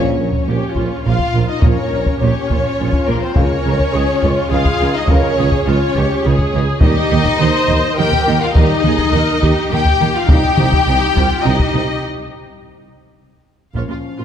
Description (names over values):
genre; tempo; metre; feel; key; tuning
cinematic, epic orchestral film score; 104 BPM; 3/4; straight; unclear; A4 = 440 Hz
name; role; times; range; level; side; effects
rich symphonic violin section; melody; 0.0-14.2 s; Bb4 to G5; -20 LUFS; left 3 dB; none
rich studio violin section; second line; 0.0-14.2 s; Bb3 to Db5; -21 LUFS; left 4 dB; none
mellow French horn section; sustained chords; 0.0-10.5, 13.8-14.2 s; F3 to F4; -27 LUFS; left 3 dB; none
warm symphonic cello section; bass; 0.0-14.2 s; Bb2 to Eb3; -23 LUFS; right 3 dB; none
warm symphonic double bass section; bass; 0.0-13.8 s; Bb1 to Eb2; -21 LUFS; right 3 dB; none
warm tuba; bass; 0.0-13.8 s; Bb1 to Eb2; -22 LUFS; right 3 dB; none
timpani; percussion; 0.0-0.7 s; Bb2; -30 LUFS; right 1 dB; none
taiko ensemble; drums; 0.3-14.2 s; none; -18 LUFS; equal; none
rich studio viola section; accompaniment; 0.5-14.2 s; Eb4 to C5; -23 LUFS; equal; none
room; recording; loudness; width
moderate concert hall reverb, RT60 2.3 s; none; -12 LUFS; side -9 dB against mid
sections
0.0-13.8 A section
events
band accent 0.0-0.5; break 12.0-13.8; drum fill 13.3-13.8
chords
0.0 Bbm; 3.4 Db; 6.8 Eb; 10.3 Cm